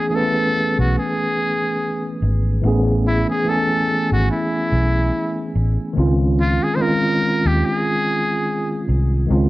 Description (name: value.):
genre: hip hop.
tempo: 72 BPM.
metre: 4/4.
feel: swing 55% on 16ths.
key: unclear.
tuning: A4 = 440 Hz.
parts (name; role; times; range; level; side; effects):
trumpet with metal mute; melody; 0.0-8.9 s; E4 to C5; -22 LUFS; equal; low-pass filter.
mellow tine electric piano; accompaniment; 0.0-9.5 s; Eb3 to G#5; -20 LUFS; equal; medium stereo tremolo, cassette tape, low-pass filter.
vintage muted fingered electric bass; bass; 0.8-9.5 s; G#1 to Eb2; -18 LUFS; equal; none.
room: moderate studio reverb, RT60 0.6 s.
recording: worn, warbling old tape, cassette tape, warbly pitch drift.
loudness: -16 LUFS.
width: side -18 dB against mid.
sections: 0.0-9.5 A section.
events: none.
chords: 0.0 Amaj9; 6.0 Dbmaj9.